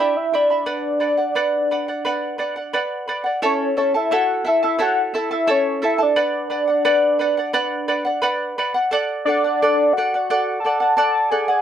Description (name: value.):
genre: andean folk.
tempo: 87 BPM.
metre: 4/4.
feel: straight.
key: B minor.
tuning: A4 = 441 Hz.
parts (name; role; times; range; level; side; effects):
warm velvety synth lead; melody; 0.0-11.6 s; C#5 to A5; -19 LUFS; equal; chorus, tremolo.
charango; accompaniment; 0.0-11.6 s; E4 to B5; -21 LUFS; right 1 dB; none.
room: light reverb.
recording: none.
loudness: -17 LUFS.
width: side -9 dB against mid.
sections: 0.0-3.4 A section; 3.4-11.6 B section.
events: none.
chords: 0.0 Em; 0.7 Bm; 3.4 A; 6.2 Bm; 8.9 D.